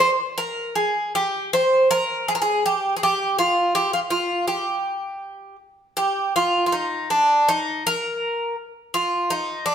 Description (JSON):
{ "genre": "fado", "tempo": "81 BPM", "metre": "2/4", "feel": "rubato", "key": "unclear", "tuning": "A4 = 441 Hz", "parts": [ { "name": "Greek bouzouki", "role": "solo", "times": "0.0-9.7 s", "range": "D4 to C5", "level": "-19 LUFS", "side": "equal", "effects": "none" } ], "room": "wet stone room reverb, RT60 1.3 s", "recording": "band playing live in one room", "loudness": "-19 LUFS", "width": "side -8 dB against mid", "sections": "0.0-6.0 A section; 6.0-9.7 A section", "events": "none", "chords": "none" }